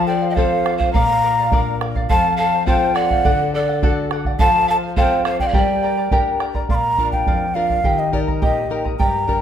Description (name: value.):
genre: andean folk, Andean ensemble.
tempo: 104 BPM.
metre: 2/4.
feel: straight.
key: unclear.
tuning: A4 = 440 Hz.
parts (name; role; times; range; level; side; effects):
mellow hollow large quena; melody; 0.0-9.4 s; D5 to C6; -19 LUFS; equal; none.
breathy mellow pan flute; second line; 0.0-6.1 s; A4 to F5; -24 LUFS; right 3 dB; none.
charango; accompaniment; 0.0-9.4 s; G4 to Bb5; -24 LUFS; equal; none.
nylon-string guitar; accompaniment; 0.0-9.4 s; F2 to Bb4; -24 LUFS; left 6 dB; none.
bombo; percussion; 0.4-9.4 s; none; -21 LUFS; right 1 dB; none.
room: moderate recital hall reverb, RT60 1.4 s.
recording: minimal, uncompressed stereo recording.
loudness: -15 LUFS.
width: side -9 dB against mid.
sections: 0.0-6.7 A section; 6.7-9.4 B section.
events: none.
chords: 0.0 F; 0.9 Bb; 2.1 F; 3.3 D; 4.4 F; 5.6 Gm; 6.7 Bb; 7.9 Eb.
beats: 0.37 | 0.95 1.52 | 2.10 2.68 | 3.25 3.83 | 4.40 4.98 | 5.55 6.13 | 6.70 7.28 | 7.85 8.43 | 9.00.